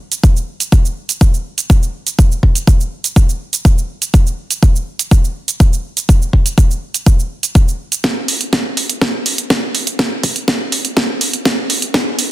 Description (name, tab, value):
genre	house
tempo	123 BPM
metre	4/4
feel	straight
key	none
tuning	none
part	house drum kit	drums	0.1-12.3 s	hi-hat, shaker, snare drum	-16 LUFS	right 2 dB	none
part	electronic kick drum	drums	0.2-12.0 s	none	-11 LUFS	equal	high-pass filter on kick, high-pass filter on room
room	little or no reverb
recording	dense, heavily limited modern master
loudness	-12 LUFS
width	side -15 dB against mid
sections	0.0-8.0 A section; 8.0-12.3 B section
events	build-up 8.0-12.3; drum fill 8.0-12.3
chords	none